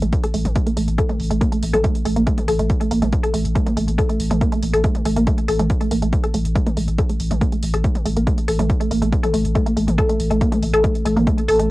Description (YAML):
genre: driving peak-time techno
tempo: 140 BPM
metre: 4/4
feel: straight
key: unclear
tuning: A4 = 440 Hz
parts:
  - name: resonant blip pluck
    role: riff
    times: 0.0-11.6 s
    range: A3 to A4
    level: -20 LUFS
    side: equal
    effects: chorus, tube saturation, sidechain pumping, tape echo
  - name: saturated sub bass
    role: bass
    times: 0.0-11.7 s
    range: A1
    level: -22 LUFS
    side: equal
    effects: sidechain pumping, low-pass filter
  - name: punchy analog drum machine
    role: drums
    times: 0.0-11.7 s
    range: hi-hat, toms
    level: -29 LUFS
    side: equal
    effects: overdrive, cassette tape
  - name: electronic kick drum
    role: drums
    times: 0.1-11.4 s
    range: none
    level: -20 LUFS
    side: equal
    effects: overdrive, cassette tape
room: moderate booth ambience, RT60 0.2 s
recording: home recording on cassette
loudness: -16 LUFS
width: side -19 dB against mid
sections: 0.0-11.7 A section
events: filter sweep on synth arpeggio sound 0.0-11.7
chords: 0.0 A5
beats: 0.13 0.56 | 0.98 1.41 1.84 2.27 | 2.70 3.13 3.56 3.98 | 4.41 4.84 5.27 5.70 | 6.13 6.55 6.98 7.41 | 7.84 8.27 8.70 9.13 | 9.55 9.98 10.41 10.84 | 11.27